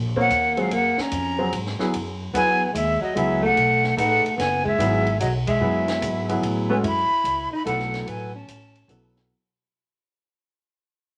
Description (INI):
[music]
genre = modal jazz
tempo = 147 BPM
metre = 3/4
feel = swing 66% on 8ths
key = unclear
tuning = A4 = 440 Hz
[part]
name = upright bass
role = bass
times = 0.0-9.3 s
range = Gb1 to A2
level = -31 LUFS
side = equal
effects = none
[part]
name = breathy bright jazz flute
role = melody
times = 0.2-9.1 s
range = Eb5 to Cb6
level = -25 LUFS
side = equal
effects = none
[part]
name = warm alto saxophone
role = second line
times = 0.2-9.1 s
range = Gb3 to Fb4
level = -29 LUFS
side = equal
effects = none
[part]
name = warm grand piano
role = accompaniment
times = 0.2-9.3 s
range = Gb3 to Db5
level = -28 LUFS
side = equal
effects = none
[part]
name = compact cocktail drum kit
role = drums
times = 0.2-9.2 s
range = hi-hat, kick drum, ride cymbal, snare drum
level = -37 LUFS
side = equal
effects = none
[sound]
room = moderate large studio reverb, RT60 0.9 s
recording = none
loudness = -22 LUFS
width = mono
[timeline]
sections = 0.0-6.8 A section; 6.8-9.3 B section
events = band accent 5.4; fade-out 6.8-9.3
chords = 0.0 Ebm11; 1.9 Gbm11; 6.8 Gbm7